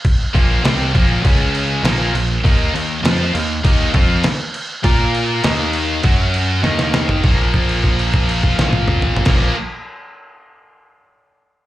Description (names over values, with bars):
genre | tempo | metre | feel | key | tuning
hard rock | 100 BPM | 4/4 | straight | Bb minor | A4 = 440 Hz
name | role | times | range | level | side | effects
trip hop sampler-style drum kit | drums | 0.0-9.4 s | crash cymbal, kick drum, snare drum, toms | -17 LUFS | equal | none
distorted electric guitar | riff | 0.3-9.5 s | Bb2 to Bb4 | -24 LUFS | equal | overdrive, slapback echo
scooped high-gain guitar | riff | 0.3-9.6 s | Bb2 to Bb4 | -20 LUFS | equal | distortion, slapback echo
picked electric bass | bass | 0.3-9.5 s | Bb1 to Bb2 | -20 LUFS | equal | none
room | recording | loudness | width
light reverb | live gig heard through the venue's PA, club reverb | -14 LUFS | side -15 dB against mid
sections
0.0-7.2 A section; 7.2-9.6 B section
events
drum fill 6.6-7.2; held note 7.2-9.3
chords
0.0 Bb5; 1.2 Db5; 1.8 Bb5; 2.4 Eb5; 4.8 Bb5; 5.4 Eb5; 6.0 Gb5; 6.6 Eb5; 7.2 Bb5